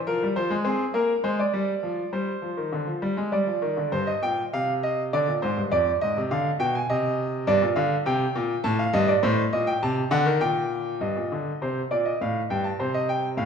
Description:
classical, baroque-style two-part invention for grand piano; 102 BPM; 3/4; straight; C minor; A4 = 441 Hz
bright concert grand piano; solo; 0.1-13.5 s; F2 to A5; -22 LUFS; equal
wet recital hall reverb, RT60 1.6 s; minimal, uncompressed stereo recording; -22 LUFS; side -6 dB against mid
0.0-3.9 A section; 3.9-11.0 B section; 11.0-13.5 A section
0.4 Dm7b5/F; 2.1 Gsus4; 3.3 G5; 3.9 Cm/G; 5.1 Gmadd11; 5.7 Bdim7/F; 6.9 Cm; 7.5 Gm; 8.6 F13; 9.2 F#dim7/A; 10.4 Gm/Bb; 11.0 Eb/G; 12.2 Fadd9; 12.8 Cm

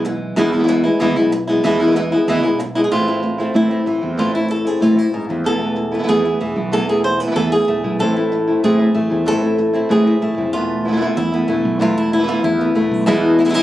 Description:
flamenco; 189 BPM; 4/4; straight; A4 = 440 Hz
flamenco guitar; melody; 0.0-13.6 s; E2 to C5; -17 LUFS; left 1 dB
flamenco guitar; stabs; 0.0-13.6 s; B2 to E4; -20 LUFS; right 1 dB
mellow fretless electric bass; bass; 0.0-13.6 s; E1 to A2; -21 LUFS; equal
light reverb; recorded on a phone in the room, club reverb, compression; -14 LUFS; side -14 dB against mid
0.0-2.9 A section; 2.9-13.1 B section
0.0 E; 2.9 Am; 5.5 Esus4; 8.0 Am; 10.5 Esus4; 13.1 E

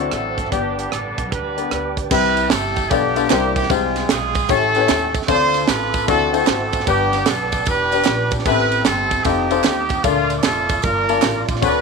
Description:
uptempo gospel; 151 BPM; 4/4; swing 65% on 8ths; C major; A4 = 435 Hz
clear horn section; melody; 0.0-11.8 s; Ab3 to C5; -20 LUFS; right 2 dB
warm baby grand piano; accompaniment; 0.0-11.8 s; G2 to A5; -21 LUFS; left 14 dB
clear studio string section; sustained chords; 0.0-2.1 s; D3 to D4; -35 LUFS; equal
mellow tonewheel organ; sustained chords; 0.0-11.8 s; Ab3 to E6; -29 LUFS; right 14 dB; fast rotary speaker, chorus vibrato
upright bass; bass; 0.0-11.8 s; E1 to Eb2; -27 LUFS; equal
tight funk drum kit; drums; 0.1-11.7 s; crash cymbal, hi-hat, kick drum, ride cymbal, rim click, snare drum; -22 LUFS; right 6 dB
tambourine and handclaps; percussion; 2.1-11.7 s; -29 LUFS; right 2 dB
light reverb; 1960s-style stereo with parts hard left and right; -16 LUFS; side -4 dB against mid
0.0-2.1 A section; 2.1-11.8 B section
0.0 D9; 0.5 G; 2.1 Cmaj7; 2.9 Bm7b5; 3.3 C9; 3.7 Fmadd9/C; 4.5 A7; 5.3 Dm7; 6.1 D9; 6.9 G; 8.5 Am7; 9.2 F7; 10.0 Bbmaj7

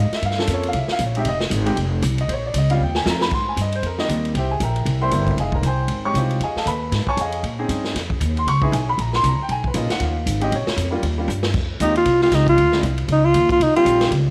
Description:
jazz, small-group swing and bop; 233 BPM; 4/4; swing 59% on 8ths; F minor, Ab major from 3.3 s; A4 = 440 Hz
warm concert grand piano; accompaniment; 0.0-14.1 s; G3 to Db6; -26 LUFS; equal
upright bass; bass; 0.0-14.3 s; F1 to Bb2; -24 LUFS; equal
swinging big-band drum kit; drums; 0.1-14.2 s; crash cymbal, hi-hat, kick drum, ride cymbal, snare drum; -29 LUFS; equal
breathy alto saxophone; melody; 11.8-14.1 s; Eb4 to F4; -18 LUFS; equal
moderate echo chamber reverb, RT60 1.9 s, studio reverb; -20 LUFS; mono
0.0-3.3 A section; 3.3-11.5 A section; 11.5-14.3 A section
drum fill 2.8-3.3, 11.3; alto saxophone solo 11.5-14.3
0.2 Gm7b5; 0.7 C5; 1.3 Fm7; 2.3 Bbm; 2.8 Ebsus2; 3.3 Abmaj9; 4.3 C7; 5.4 Fm9; 6.4 F7alt; 7.4 Bbm11; 8.5 Dbm7; 9.0 Gmadd11/Bb; 9.5 Bmaj9#11; 10.5 Bbm; 11.0 Eb9; 11.5 Fm9; 12.6 Dm7b5; 13.1 Dbadd9; 13.6 Cm7

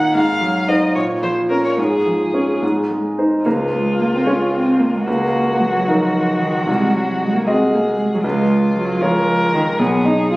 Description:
quick classical-period movement for piano trio; 71-78 BPM (dotted quarters); 6/8; rubato; Db major; A4 = 440 Hz
muted violin; melody; 0.0-10.4 s; F4 to Gb5; -20 LUFS; left 1 dB
clear concert grand piano; accompaniment; 0.0-10.4 s; Cb2 to Eb5; -18 LUFS; equal
muted cello; second line; 3.5-10.4 s; Eb3 to F4; -18 LUFS; right 1 dB
wet recital hall reverb, RT60 1.3 s; recorded on a phone in the room, studio reverb, compression; -15 LUFS; side -20 dB against mid
0.0-3.5 A section; 3.5-10.4 B section
0.2 Ab7; 1.0 Bbm; 1.8 Db/Ab; 2.6 Ab; 3.5 Db; 5.1 Ebm7/Db; 6.7 Ab7/C; 8.2 Db; 9.8 Abm/Cb

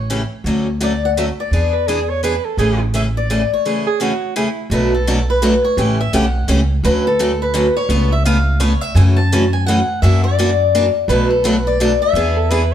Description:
acoustic string swing (jazz manouche); 169 BPM; 3/4; swing 61% on 8ths; A major; A4 = 440 Hz
picked swing-style acoustic guitar; melody; 0.0-12.7 s; A4 to A5; -18 LUFS; left 2 dB
upright bass; bass; 0.0-12.7 s; A1 to F#2; -17 LUFS; equal
picked steel-string acoustic guitar; accompaniment; 0.1-12.6 s; B2 to B4; -19 LUFS; equal
mellow soprano saxophone; second line; 1.7-4.7, 12.4-12.7 s; E4 to C#5; -21 LUFS; right 7 dB
moderate studio reverb, RT60 0.9 s; band playing live in one room; -14 LUFS; side -10 dB against mid
0.0-4.7 A section; 4.7-12.7 B section
break 3.6-4.7
0.5 Dmaj7; 1.5 E7; 2.6 Amaj7; 4.7 Bm7; 5.8 A13; 6.8 Dmaj7; 7.9 C#aug7; 9.0 F#m7; 10.0 F#aug7; 11.1 Bm7; 12.2 E7

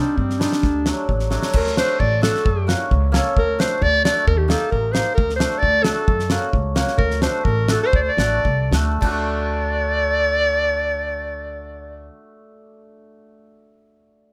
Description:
klezmer; 99-132 BPM; 2/4; straight; D phrygian dominant; A4 = 438 Hz
warm clarinet; melody; 0.0-12.1 s; C4 to D5; -23 LUFS; equal
hammered dulcimer; accompaniment; 0.0-13.4 s; F#3 to A4; -29 LUFS; equal
upright bass; bass; 0.2-12.1 s; A1 to G2; -25 LUFS; equal
damped 70s drum kit; drums; 0.2-9.2 s; crash cymbal, kick drum, snare drum; -24 LUFS; equal
light reverb; -19 LUFS; mono
0.0-1.5 A section; 1.5-9.0 B section; 9.0-11.4 C section
drum fill 1.3; slowing down 7.0-9.0
0.0 Cm; 0.6 D; 2.4 F#; 3.4 D; 4.3 Eb; 5.2 D; 6.1 F#; 7.0 D

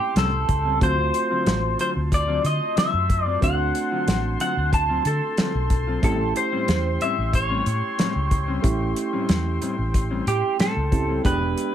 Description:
straight-eighth soul blues; 92 BPM; 4/4; straight; A4 = 440 Hz
electric guitar through a small old amp; melody; 0.0-11.7 s; G4 to A5; -24 LUFS; equal; lush chorus
overdriven reed electric piano; accompaniment; 0.0-11.7 s; G#3 to G4; -29 LUFS; right 5 dB
clear horn section; sustained chords; 0.0-11.7 s; E4 to B#5; -35 LUFS; left 2 dB
mellow electric guitar; stabs; 0.2-11.6 s; A2 to G4; -31 LUFS; left 4 dB; spring reverb
vintage muted fingered electric bass; bass; 0.2-11.5 s; E1 to D3; -25 LUFS; equal
warm soul drum kit; drums; 0.2-11.7 s; hi-hat, kick drum, snare drum; -24 LUFS; equal
light reverb; -20 LUFS; side -10 dB against mid
0.0-11.7 A section
0.0 A7#9; 0.8 D7#9; 6.0 A7#9; 11.2 E7#9

